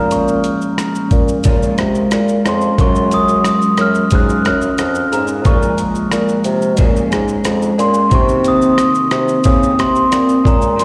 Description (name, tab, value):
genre	indie pop, bedroom pop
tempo	90 BPM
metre	4/4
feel	straight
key	Bb minor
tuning	A4 = 439 Hz
part	glockenspiel with rubber mallets	melody	0.0-10.8 s	Bb5 to Gb6	-21 LUFS	equal	subtle chorus, slapback echo
part	electric guitar through a small old amp	accompaniment	0.0-10.8 s	Bb2 to Bb4	-19 LUFS	equal	analog chorus, vibrato effect, slapback echo
part	warm bassoon	bass	0.0-10.8 s	F2 to Db3	-20 LUFS	equal	none
part	dusty soul sampler-style drum kit	drums	0.1-10.8 s	hi-hat, kick drum, rim click, shaker	-19 LUFS	equal	none
room	moderate club reverb, RT60 0.5 s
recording	live gig heard through the venue's PA, recital hall reverb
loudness	-14 LUFS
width	mono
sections	0.0-10.8 A section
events	none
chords	0.0 Bbm7; 2.8 Gbmaj9; 5.5 Bbm7; 8.1 Cm7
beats	| 0.12 0.79 1.45 2.12 | 2.79 3.45 4.12 4.78 | 5.45 6.12 6.78 7.45 | 8.12 8.78 9.45 10.11 | 10.78